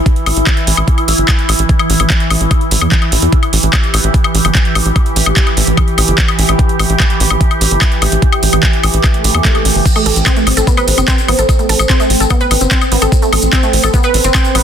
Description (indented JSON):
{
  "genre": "psychedelic trance",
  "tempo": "147 BPM",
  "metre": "4/4",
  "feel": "straight",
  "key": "A minor",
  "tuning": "A4 = 440 Hz",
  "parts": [
    { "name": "overtone-sweeping drone", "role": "sustained chords", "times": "0.0-14.6 s", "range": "E3 to G4", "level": "-16 LUFS", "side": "right 1 dB", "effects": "chorus, built-in reverb, phaser, sidechain pumping" },
    { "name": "electronic kick drum", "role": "drums", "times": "0.1-14.4 s", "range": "none", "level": "-12 LUFS", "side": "equal", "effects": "overdrive" },
    { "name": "garage drum kit", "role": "drums", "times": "0.1-14.6 s", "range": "crash cymbal, handclaps, hi-hat, woodblock", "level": "-15 LUFS", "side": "left 1 dB", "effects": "overdrive" },
    { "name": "tight sequencer bass", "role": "bass", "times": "0.3-14.6 s", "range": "G1 to E2", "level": "-14 LUFS", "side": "equal", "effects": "none" },
    { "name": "swell", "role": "sound effects", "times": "9.1-9.9 s", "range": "none", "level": "-21 LUFS", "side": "right 2 dB", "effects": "none" },
    { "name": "maracas", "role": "percussion", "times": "9.9-14.5 s", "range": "none", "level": "-25 LUFS", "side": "left 3 dB", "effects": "none" },
    { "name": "wide unison pluck", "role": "riff", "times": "10.0-14.6 s", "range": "A3 to B4", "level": "-16 LUFS", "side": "right 1 dB", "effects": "auto-pan, sidechain pumping, digital delay" }
  ],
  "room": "digital ambience",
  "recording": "dense, heavily limited modern master",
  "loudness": "-9 LUFS",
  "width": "side -8 dB against mid",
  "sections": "0.0-14.6 A section",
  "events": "swell 9.1-9.9",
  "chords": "0.0 A5"
}